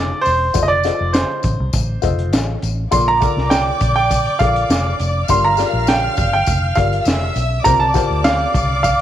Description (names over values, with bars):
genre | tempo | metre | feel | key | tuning
uptempo 1960s-style soul | 101 BPM | 4/4 | straight | F major | A4 = 439 Hz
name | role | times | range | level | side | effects
bright baby grand piano | melody | 0.0-9.0 s | C5 to C6 | -18 LUFS | right 3 dB | slapback echo
dark upright piano | accompaniment | 0.0-8.6 s | G2 to F5 | -24 LUFS | left 12 dB | none
vintage muted fingered electric bass | bass | 0.0-9.0 s | E1 to D2 | -20 LUFS | equal | none
crunchy breakbeat drum kit | drums | 0.2-9.0 s | hi-hat, kick drum, snare drum | -21 LUFS | equal | none
tambourine | percussion | 0.3-9.0 s | none | -31 LUFS | left 16 dB | none
warm studio violin section | second line | 2.9-9.0 s | D5 to F6 | -22 LUFS | left 1 dB | none
room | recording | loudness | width
light reverb, small room ambience | 1960s-style stereo | -14 LUFS | side -11 dB against mid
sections
0.0-9.0 A section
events
upright piano fill 2.0-2.9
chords
0.0 F7; 2.9 Bbmaj7; 5.3 Gm7; 7.7 C7sus4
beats
| 0.55 1.14 1.74 2.33 | 2.92 3.52 4.11 4.70 | 5.29 5.89 6.48 7.07 | 7.67 8.26 8.85